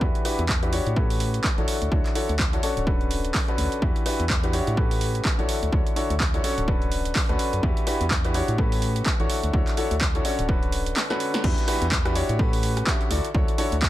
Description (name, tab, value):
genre	piano house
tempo	126 BPM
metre	4/4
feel	swing 58% on 16ths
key	D major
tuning	A4 = 442 Hz
part	clear concert grand piano	riff	0.0-13.7 s	A2 to E5	-27 LUFS	left 1 dB	sidechain pumping, low-pass filter, ping-pong delay
part	organ-like FM bass	bass	0.0-13.9 s	D1 to A2	-27 LUFS	equal	sidechain pumping
part	electronic kick drum	drums	0.0-13.9 s	none	-25 LUFS	equal	overdrive
part	punchy analog drum machine	drums	0.2-13.9 s	crash cymbal, handclaps, hi-hat, rim click, snare drum	-28 LUFS	right 1 dB	overdrive
room	little or no reverb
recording	none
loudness	-21 LUFS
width	side -14 dB against mid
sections	0.0-11.4 A section; 11.4-13.9 B section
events	drum fill 11.0-11.4; band accent 11.3; drop 11.4-13.9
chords	0.0 Em9; 1.0 A13; 1.7 Dmaj9; 2.6 Bm9/D; 3.8 Em9; 4.8 A13; 5.5 Dmaj9; 6.4 Bm9/D; 7.6 Em9; 8.6 A13; 9.3 Dmaj9; 10.2 Bm9/D; 11.4 Em9; 12.4 A13; 13.1 Dmaj9